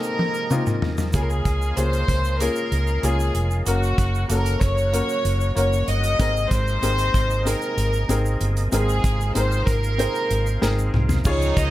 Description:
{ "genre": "piano-driven pop", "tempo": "95 BPM", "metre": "4/4", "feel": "straight", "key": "unclear", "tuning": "A4 = 438 Hz", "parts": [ { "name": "warm studio violin section", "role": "melody", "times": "0.0-11.7 s", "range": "Gb4 to Eb5", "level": "-25 LUFS", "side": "equal", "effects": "none" }, { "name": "clear upright piano", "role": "accompaniment", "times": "0.0-11.7 s", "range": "Ab2 to Db5", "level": "-27 LUFS", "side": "left 2 dB", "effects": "none" }, { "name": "overdriven tonewheel organ", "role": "sustained chords", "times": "0.0-11.7 s", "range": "C3 to Gb4", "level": "-34 LUFS", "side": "right 1 dB", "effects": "chorus vibrato, slow rotary speaker" }, { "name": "egg shaker", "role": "percussion", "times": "0.0-11.7 s", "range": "none", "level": "-38 LUFS", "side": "right 6 dB", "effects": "none" }, { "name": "modern studio drum kit", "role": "drums", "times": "0.2-11.7 s", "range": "crash cymbal, hi-hat, kick drum, snare drum, toms", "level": "-24 LUFS", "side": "equal", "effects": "none" }, { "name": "vintage muted fingered electric bass", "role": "bass", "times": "1.1-11.7 s", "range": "F1 to Db2", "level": "-22 LUFS", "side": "equal", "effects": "none" }, { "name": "muted French horn section", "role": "second line", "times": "11.3-11.7 s", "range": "Eb3 to Eb4", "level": "-28 LUFS", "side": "right 4 dB", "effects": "none" } ], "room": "light reverb", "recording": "none", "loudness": "-19 LUFS", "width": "side -15 dB against mid", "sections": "0.0-11.3 A section", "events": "drum fill 0.0-1.1, 10.6-11.3", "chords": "0.0 Abadd9; 1.1 Db6; 3.7 Gb; 6.2 Abadd9", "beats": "0.51 | 1.14 1.77 2.40 3.04 | 3.67 4.30 4.93 5.56 | 6.20 6.83 7.46 8.09 | 8.72 9.36 9.99 10.62 | 11.25" }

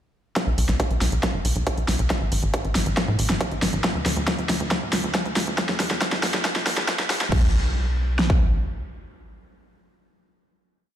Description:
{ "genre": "uplifting trance", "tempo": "138 BPM", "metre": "4/4", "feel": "straight", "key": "B minor", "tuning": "A4 = 438 Hz", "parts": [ { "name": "big-room dance drum kit", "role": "drums", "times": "0.4-8.4 s", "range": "kick drum, snare drum", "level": "-22 LUFS", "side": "equal", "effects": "overdrive, high-pass filter on kick, studio ambience, high-pass filter on snare" }, { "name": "big-room dance drum kit", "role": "drums", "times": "0.4-7.4 s", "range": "crash cymbal, hi-hat, snare drum", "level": "-24 LUFS", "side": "equal", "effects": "overdrive, studio ambience, sidechain pumping on hats, sidechain pumping on cymbals" }, { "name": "tight sequencer bass", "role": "bass", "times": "0.5-8.6 s", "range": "D1 to A2", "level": "-24 LUFS", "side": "equal", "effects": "sidechain pumping" } ], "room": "light reverb, digital ambience", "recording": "played on a big sound system in a bare room, large studio reverb, high-pass filter", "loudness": "-20 LUFS", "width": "side -11 dB against mid", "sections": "0.4-7.3 build; 7.3-10.8 final chord", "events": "build-up 0.4-7.3; drum fill 0.4-7.3; filter sweep 0.4-7.3", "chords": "none", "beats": "| 0.36 0.80 1.23 1.67 | 2.10 2.54 2.97 3.41 | 3.84 4.28 4.71 5.15 | 5.58 6.01 6.45 6.88 | 7.32 7.75 8.19" }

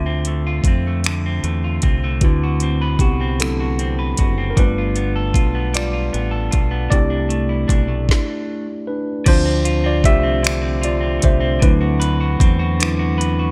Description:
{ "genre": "slow six-eight R&B", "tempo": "51 BPM (dotted quarters)", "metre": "6/8", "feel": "straight", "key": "D dorian", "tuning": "A4 = 440 Hz", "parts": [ { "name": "electric guitar at the edge of break-up", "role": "second line", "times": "0.0-13.5 s", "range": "C3 to B4", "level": "-27 LUFS", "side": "equal", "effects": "none" }, { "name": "tine electric piano", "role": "accompaniment", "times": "0.0-13.5 s", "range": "F3 to E5", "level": "-25 LUFS", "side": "equal", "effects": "none" }, { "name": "deep dub fingered electric bass", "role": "bass", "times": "0.0-13.5 s", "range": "F#1 to F2", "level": "-23 LUFS", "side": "equal", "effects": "none" }, { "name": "smooth R&B drum kit", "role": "drums", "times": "0.2-13.4 s", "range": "crash cymbal, finger snaps, hi-hat, kick drum, snare drum", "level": "-19 LUFS", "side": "equal", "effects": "none" } ], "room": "digital ambience", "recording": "none", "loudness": "-18 LUFS", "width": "mono", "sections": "0.0-9.3 A section; 9.3-13.5 B section", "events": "tine electric piano solo 0.0-9.3, 9.3-13.5; stop 8.1-9.3", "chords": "0.0 Dm7; 2.2 D13; 4.6 G9; 6.9 C69; 9.3 Dm7; 11.6 D13", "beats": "1.04 | 2.21 3.39 | 4.57 5.74 | 6.92 8.10 | 9.27 10.45 | 11.62 12.80" }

